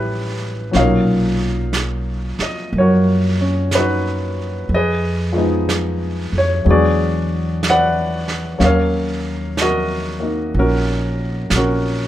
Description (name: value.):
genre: jazz ballad.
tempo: 62 BPM.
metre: 4/4.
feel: swing 66% on 8ths.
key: unclear.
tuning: A4 = 441 Hz.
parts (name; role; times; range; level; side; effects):
warm baby grand piano; accompaniment; 0.0-12.1 s; A#2 to F#5; -18 LUFS; left 1 dB; none.
upright bass; bass; 0.0-12.1 s; A1 to F#2; -19 LUFS; equal; none.
vintage brush drum kit; drums; 0.7-12.1 s; brushed snare drum, hi-hat, snare drum; -27 LUFS; right 3 dB; none.
room: light reverb.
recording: none.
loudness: -15 LUFS.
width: side -13 dB against mid.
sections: 0.0-12.1 A section.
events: none.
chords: 0.0 A9; 0.7 Bmaj9; 4.7 Fm7b5; 6.6 E9; 8.6 Ebm9.